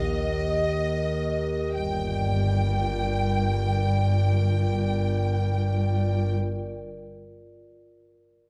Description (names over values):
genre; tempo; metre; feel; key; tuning
cinematic; free time; none; none; G minor; A4 = 440 Hz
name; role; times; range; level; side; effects
warm symphonic violin section; melody; 0.0-6.3 s; Eb5 to G5; -34 LUFS; equal; none
glass harmonica; sustained chords; 0.0-6.3 s; F4 to Eb5; -34 LUFS; equal; none
rich symphonic double bass section; bass; 0.0-6.3 s; G1 to Bb1; -31 LUFS; equal; none
warm symphonic cello section; bass; 0.0-6.3 s; G2 to Bb2; -30 LUFS; equal; none
metallic inharmonic drone; drone; 0.0-6.3 s; G1 to Eb2; -34 LUFS; equal; chorus, built-in reverb
room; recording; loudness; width
wet recital hall reverb, RT60 1.9 s; none; -25 LUFS; mono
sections
0.0-1.8 A section; 1.8-5.6 B section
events
none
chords
0.0 Eb; 1.8 Gm7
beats
free time